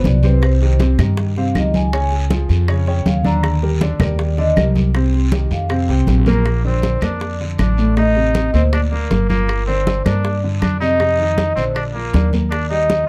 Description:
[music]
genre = Afro-Cuban jazz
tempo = 159 BPM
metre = 4/4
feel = straight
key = Bb major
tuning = A4 = 440 Hz
[part]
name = vibraphone with soft mallets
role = melody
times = 0.0-13.1 s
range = Bb4 to Bb5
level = -24 LUFS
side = equal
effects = none
[part]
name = warm concert grand piano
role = accompaniment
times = 0.0-13.0 s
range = A2 to D5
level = -25 LUFS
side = equal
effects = none
[part]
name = upright bass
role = bass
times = 0.0-13.0 s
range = G1 to G2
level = -20 LUFS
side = equal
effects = none
[part]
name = congas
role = percussion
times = 0.0-13.1 s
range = none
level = -23 LUFS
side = equal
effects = none
[part]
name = guiro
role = percussion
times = 0.0-13.1 s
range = none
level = -38 LUFS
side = equal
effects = none
[part]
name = bongos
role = percussion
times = 0.1-13.1 s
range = none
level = -30 LUFS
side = equal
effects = none
[part]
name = claves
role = percussion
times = 0.4-12.7 s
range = none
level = -34 LUFS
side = equal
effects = none
[part]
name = trumpet with straight mute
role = second line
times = 6.3-13.1 s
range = Bb3 to Eb4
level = -28 LUFS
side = equal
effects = none
[sound]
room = light reverb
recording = dark, warm production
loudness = -17 LUFS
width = mono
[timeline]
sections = 0.0-6.5 A section; 6.5-13.1 B section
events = vibraphone solo 0.0-6.5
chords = 0.4 Cm; 1.9 Dbadd9; 3.4 Ebmaj7; 4.9 Cmadd11; 5.7 F5; 6.5 Bbmaj9; 8.0 Adim; 8.7 Gm7; 11.0 F5; 11.8 Bb; 12.5 Ebmaj7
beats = 0.05 | 0.43 0.80 1.18 1.56 | 1.93 2.31 2.69 3.06 | 3.44 3.82 4.19 4.57 | 4.95 5.33 5.70 6.08 | 6.46 6.83 7.21 7.59 | 7.97 8.35 8.73 9.11 | 9.49 9.87 10.25 10.62 | 11.00 11.38 11.76 12.14 | 12.52 12.90

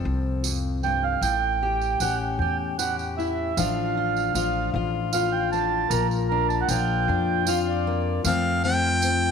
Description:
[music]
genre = acoustic folk duo or small band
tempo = 51 BPM (dotted quarters)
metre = 6/8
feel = straight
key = F major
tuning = A4 = 442 Hz
[part]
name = fingerpicked steel-string acoustic guitar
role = accompaniment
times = 0.0-9.3 s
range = F2 to A4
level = -27 LUFS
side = left 9 dB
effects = none
[part]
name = upright bass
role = bass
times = 0.0-9.3 s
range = A1 to F2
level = -28 LUFS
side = equal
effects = none
[part]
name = tambourine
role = percussion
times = 0.4-9.2 s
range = none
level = -33 LUFS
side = right 10 dB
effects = none
[part]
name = mellow accordion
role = second line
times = 0.8-8.2 s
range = Bb4 to A5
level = -26 LUFS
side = right 9 dB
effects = none
[part]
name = clear harmonica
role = melody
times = 8.3-9.3 s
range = F5 to G5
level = -23 LUFS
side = equal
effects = none
[sound]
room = wet echo chamber reverb, RT60 1.9 s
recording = 1960s-style stereo with parts hard left and right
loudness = -22 LUFS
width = side -6 dB against mid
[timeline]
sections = 0.0-8.2 A section; 8.2-9.3 B section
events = accordion solo 0.0-8.2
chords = 0.0 F; 1.2 A7; 3.6 Dm/A; 5.9 Bb; 8.2 F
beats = 0.06 | 1.23 2.40 | 3.57 4.74 | 5.91 7.08 | 8.24

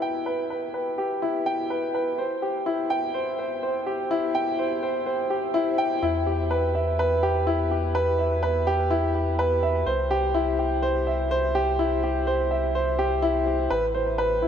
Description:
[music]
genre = piano and strings electronica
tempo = 125 BPM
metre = 4/4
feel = straight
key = E minor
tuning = A4 = 440 Hz
[part]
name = warm grand piano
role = riff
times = 0.0-14.5 s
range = E4 to G5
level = -23 LUFS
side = equal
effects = tape echo, shimmer reverb
[part]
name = warm sub bass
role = bass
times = 6.0-14.5 s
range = A1 to E2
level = -28 LUFS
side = equal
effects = none
[sound]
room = moderate huge ambient reverb, RT60 7.3 s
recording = none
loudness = -22 LUFS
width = side -8 dB against mid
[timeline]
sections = 0.0-6.0 A section; 6.0-14.5 B section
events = build-up 0.0-6.0; drop 6.0-14.5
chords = 0.0 Em; 2.2 C; 6.0 Em; 9.9 C; 13.7 Amadd9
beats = | 0.27 0.75 1.23 1.71 | 2.19 2.67 3.15 3.63 | 4.11 4.59 5.07 5.55 | 6.03 6.51 6.99 7.47 | 7.95 8.43 8.91 9.39 | 9.87 10.35 10.83 11.31 | 11.79 12.27 12.75 13.23 | 13.71 14.19

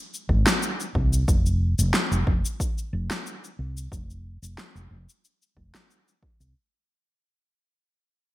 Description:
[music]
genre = organic downtempo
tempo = 91 BPM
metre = 4/4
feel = swing 53% on 16ths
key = F minor pentatonic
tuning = A4 = 440 Hz
[part]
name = electronic shaker and snare drum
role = drums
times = 0.1-6.5 s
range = none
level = -26 LUFS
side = equal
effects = studio reverb, gated reverb
[part]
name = woody fretless electric bass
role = bass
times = 0.3-6.5 s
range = F1 to C2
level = -24 LUFS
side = equal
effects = tube saturation, sidechain pumping
[part]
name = electronic kick drum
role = drums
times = 0.3-6.4 s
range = none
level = -25 LUFS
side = equal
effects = studio reverb
[sound]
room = light reverb, digital ambience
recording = bright 1980s-style digital production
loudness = -22 LUFS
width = side -16 dB against mid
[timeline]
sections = 0.0-6.6 A section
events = fade-out 0.0-6.6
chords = none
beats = 0.62 | 1.28 1.94 2.60 3.26 | 3.92 4.58 5.24 5.89

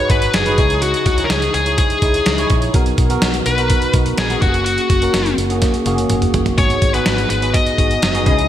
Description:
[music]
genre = 1980s-style pop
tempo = 125 BPM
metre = 4/4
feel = straight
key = unclear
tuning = A4 = 440 Hz
[part]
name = high-gain lead guitar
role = melody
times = 0.0-8.5 s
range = F#4 to D#5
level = -18 LUFS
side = left 3 dB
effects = distortion, ping-pong delay
[part]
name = bell-like tine electric piano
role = accompaniment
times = 0.0-8.5 s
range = G#2 to D#5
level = -20 LUFS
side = right 1 dB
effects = ensemble chorus
[part]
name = vintage muted fingered electric bass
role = bass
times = 0.1-8.5 s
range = F#1 to C#2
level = -22 LUFS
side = equal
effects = none
[part]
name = trip hop sampler-style drum kit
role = drums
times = 0.1-8.5 s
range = hi-hat, kick drum, snare drum, toms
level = -17 LUFS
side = equal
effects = gated reverb
[sound]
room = moderate lush hall reverb, RT60 2.1 s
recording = bright 1980s-style digital production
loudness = -13 LUFS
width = side -11 dB against mid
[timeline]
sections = 0.0-8.5 A section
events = drum fill 5.6-6.6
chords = 0.0 G#m7; 0.6 C#madd9; 2.7 Bmaj7; 4.4 F#add9; 6.6 G#m7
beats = 0.34 | 0.82 1.30 1.78 2.26 | 2.74 3.22 3.70 4.18 | 4.66 5.14 5.62 6.10 | 6.58 7.06 7.54 8.02

